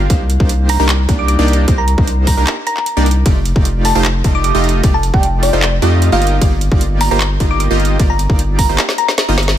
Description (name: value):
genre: future bass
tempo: 152 BPM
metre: 4/4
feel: half-time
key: unclear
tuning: A4 = 440 Hz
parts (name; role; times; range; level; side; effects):
- thumb-piano-like synth pluck; melody; 0.0-9.3 s; D5 to D6; -20 LUFS; equal; chorus, phaser, sidechain pumping, ping-pong delay
- supersaw stab; riff; 0.0-9.4 s; A3 to Eb5; -18 LUFS; right 1 dB; sidechain pumping
- saturated sub bass; bass; 0.0-9.6 s; F1 to F2; -15 LUFS; equal; tube saturation, sidechain pumping
- electronic kick drum; drums; 0.1-8.7 s; none; -14 LUFS; equal; none
- trap drum kit; drums; 0.1-9.6 s; handclaps, hi-hat, ride cymbal, snare drum; -20 LUFS; equal; none
room: little or no reverb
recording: none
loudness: -11 LUFS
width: side -11 dB against mid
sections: 0.0-9.6 A section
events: drum fill 8.8-9.6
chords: 0.1 Cm9; 3.3 F13; 6.2 Ebmaj9/G